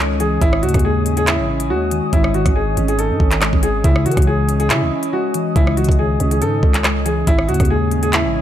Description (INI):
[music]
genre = hip hop, drill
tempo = 140 BPM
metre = 4/4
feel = half-time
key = C# minor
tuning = A4 = 442 Hz
[part]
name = warm upright piano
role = melody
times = 0.0-8.4 s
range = E4 to A4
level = -21 LUFS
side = equal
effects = none
[part]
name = mellow electric guitar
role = accompaniment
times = 0.0-8.4 s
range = G#2 to D#5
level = -22 LUFS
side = left 2 dB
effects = analog chorus
[part]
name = deep dark ambient pad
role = sustained chords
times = 0.0-8.4 s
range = C#5 to D#6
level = -26 LUFS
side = equal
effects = chorus, built-in reverb
[part]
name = growling 808-style bass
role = bass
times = 0.0-8.4 s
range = G#1 to E3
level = -20 LUFS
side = equal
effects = none
[part]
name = drill drum kit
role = drums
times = 0.2-8.2 s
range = handclaps, hi-hat, kick drum, rim click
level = -17 LUFS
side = equal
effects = none
[sound]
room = little or no reverb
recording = none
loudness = -14 LUFS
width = side -11 dB against mid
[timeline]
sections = 0.0-8.4 A section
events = none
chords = 0.4 G#sus4; 3.8 C#madd9; 7.3 G#sus4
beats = | 0.41 0.84 1.27 1.70 | 2.13 2.56 2.99 3.42 | 3.84 4.27 4.70 5.13 | 5.56 5.99 6.42 6.84 | 7.27 7.70 8.13